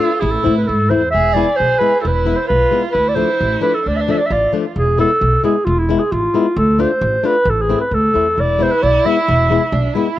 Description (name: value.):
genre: klezmer.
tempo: 132 BPM.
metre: 2/4.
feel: straight.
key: unclear.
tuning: A4 = 438 Hz.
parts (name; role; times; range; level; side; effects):
breathy clarinet; melody; 0.0-10.0 s; E4 to E5; -16 LUFS; equal; cassette tape, plate reverb.
warm violin; second line; 0.0-4.8, 8.4-10.2 s; D4 to G#4; -23 LUFS; right 7 dB; cassette tape, plate reverb.
flamenco guitar; accompaniment; 0.0-10.1 s; F3 to F4; -20 LUFS; left 6 dB; cassette tape, plate reverb.
upright bass; bass; 0.2-9.9 s; E1 to A2; -18 LUFS; equal; none.
room: wet booth ambience, RT60 0.2 s.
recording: home recording on cassette.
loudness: -13 LUFS.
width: side -13 dB against mid.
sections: 0.0-4.8 A section; 4.8-10.2 A section.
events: none.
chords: 0.2 Am; 1.1 E; 2.9 Dm; 4.8 E; 6.6 Dm; 7.5 Am; 8.4 E.